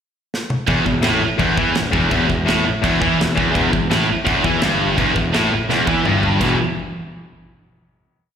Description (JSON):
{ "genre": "heavy metal", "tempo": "168 BPM", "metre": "4/4", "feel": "straight", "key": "E minor", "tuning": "A4 = 440 Hz", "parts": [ { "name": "modern studio drum kit", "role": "drums", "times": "0.3-6.5 s", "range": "crash cymbal, kick drum, snare drum, toms", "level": "-22 LUFS", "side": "equal", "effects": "none" }, { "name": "heavy high-gain guitar", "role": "riff", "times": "0.7-6.6 s", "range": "E2 to E3", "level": "-21 LUFS", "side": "right 11 dB", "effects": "distortion, slapback echo" }, { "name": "thick fuzz guitar", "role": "riff", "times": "0.7-6.6 s", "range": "E2 to E3", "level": "-22 LUFS", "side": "right 1 dB", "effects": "distortion, slapback echo" }, { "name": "tight distorted guitar", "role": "riff", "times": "0.7-6.6 s", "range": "E2 to E3", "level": "-20 LUFS", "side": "left 8 dB", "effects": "distortion, slapback echo" }, { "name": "fuzz picked electric bass", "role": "bass", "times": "0.7-6.6 s", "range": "E1 to E2", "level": "-24 LUFS", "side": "equal", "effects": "overdrive" } ], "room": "light reverb", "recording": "live gig heard through the venue's PA, recital hall reverb", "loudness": "-15 LUFS", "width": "side -8 dB against mid", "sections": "0.0-0.7 pickup bar; 0.7-6.4 riff; 6.4-7.8 final chord", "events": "drum fill 0.3-0.7, 5.7-6.4", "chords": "0.0 N.C.; 0.7 Em; 6.4 E5" }